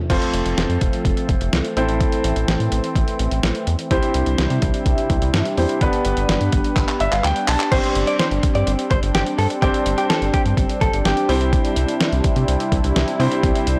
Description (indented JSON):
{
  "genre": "synth-pop",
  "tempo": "126 BPM",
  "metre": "4/4",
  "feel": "straight",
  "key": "unclear",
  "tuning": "A4 = 440 Hz",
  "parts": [
    { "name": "sweeping resonant pad", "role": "sustained chords", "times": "0.0-13.8 s", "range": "C3 to E4", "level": "-28 LUFS", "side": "equal", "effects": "chorus" },
    { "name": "clear baby grand piano", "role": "accompaniment", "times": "0.1-13.8 s", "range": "B3 to A5", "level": "-25 LUFS", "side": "equal", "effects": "none" },
    { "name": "round analog bass", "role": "bass", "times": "0.1-13.8 s", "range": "F1 to C3", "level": "-24 LUFS", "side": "equal", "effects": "none" },
    { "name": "dusty soul sampler-style drum kit", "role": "drums", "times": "0.1-13.8 s", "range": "crash cymbal, handclaps, hi-hat, kick drum, snare drum", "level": "-23 LUFS", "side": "equal", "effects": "overdrive" },
    { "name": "direct-recorded clean electric guitar", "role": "second line", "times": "7.7-11.4 s", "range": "G4 to D5", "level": "-26 LUFS", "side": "equal", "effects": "lush chorus, tape echo" }
  ],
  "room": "light reverb",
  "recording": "blown-out, overdriven recording, overdrive",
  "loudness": "-19 LUFS",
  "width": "mono",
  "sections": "0.1-7.7 A section; 7.7-13.8 B section",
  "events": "drum fill 6.8-7.7; grand piano fill 6.8-7.7",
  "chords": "0.1 F; 1.8 Am; 3.9 Cadd9; 5.8 G; 7.7 Gsus4; 11.3 Cadd9"
}